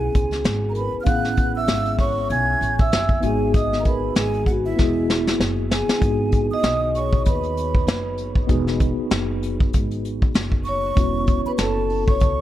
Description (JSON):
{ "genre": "hip hop, jazz-hop", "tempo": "97 BPM", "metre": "4/4", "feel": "swing 58% on 16ths", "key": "unclear", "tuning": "A4 = 440 Hz", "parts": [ { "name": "vibraphone with soft mallets", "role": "melody", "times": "0.0-12.4 s", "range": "E4 to G#5", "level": "-25 LUFS", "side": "moving between left 4 dB and right 3 dB", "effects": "auto-pan, analog delay" }, { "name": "breathy hollow jazz flute", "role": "second line", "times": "0.0-12.4 s", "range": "E5 to G#6", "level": "-28 LUFS", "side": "right 4 dB", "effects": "analog delay" }, { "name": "mellow tine electric piano", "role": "accompaniment", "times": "0.0-12.4 s", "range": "B3 to G#4", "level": "-27 LUFS", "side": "left 1 dB", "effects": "medium stereo tremolo" }, { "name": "upright bass", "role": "bass", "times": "0.0-12.4 s", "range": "E1 to D#2", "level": "-26 LUFS", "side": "equal", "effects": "none" }, { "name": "vintage brush drum kit", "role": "drums", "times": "0.1-12.4 s", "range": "hi-hat, kick drum, snare drum", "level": "-20 LUFS", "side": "equal", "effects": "none" } ], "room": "light reverb", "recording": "echo-heavy mix", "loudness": "-18 LUFS", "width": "side -13 dB against mid", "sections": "0.0-6.0 A section; 6.0-12.4 B section", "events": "drum fill 4.8-6.0", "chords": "0.0 C#m7; 1.1 Amaj7; 3.2 G#m7; 4.8 Eadd9; 6.0 G#m7; 8.5 Emaj9; 11.0 A69/E" }